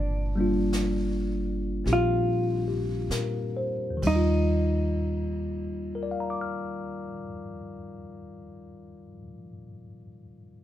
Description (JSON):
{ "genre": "jazz ballad", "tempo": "41-58 BPM", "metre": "4/4", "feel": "swing 67% on 8ths", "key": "Eb major", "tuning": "A4 = 440 Hz", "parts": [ { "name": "hollow-body jazz guitar", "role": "melody", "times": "0.0-7.2 s", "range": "D4 to F4", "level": "-29 LUFS", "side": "equal", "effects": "none" }, { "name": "tine electric piano", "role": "accompaniment", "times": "0.0-10.6 s", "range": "Eb2 to F6", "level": "-30 LUFS", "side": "left 2 dB", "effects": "overdrive" }, { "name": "upright bass", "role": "bass", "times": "0.0-7.1 s", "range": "G1 to Bb2", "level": "-29 LUFS", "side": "equal", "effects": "none" }, { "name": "jazz brush drum kit", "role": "drums", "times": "0.7-4.2 s", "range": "brushed snare drum, hi-hat, kick drum, ride cymbal, snare drum", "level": "-39 LUFS", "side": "right 2 dB", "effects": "none" } ], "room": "light reverb", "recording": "band playing live in one room", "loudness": "-25 LUFS", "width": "side -12 dB against mid", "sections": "0.0-4.5 A section; 4.5-10.3 B section", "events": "slowing down 0.0-4.5", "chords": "0.0 Ebmaj9; 3.8 Ebadd9", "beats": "0.73 1.86 3.11 | 4.49 5.95 7.39 8.84" }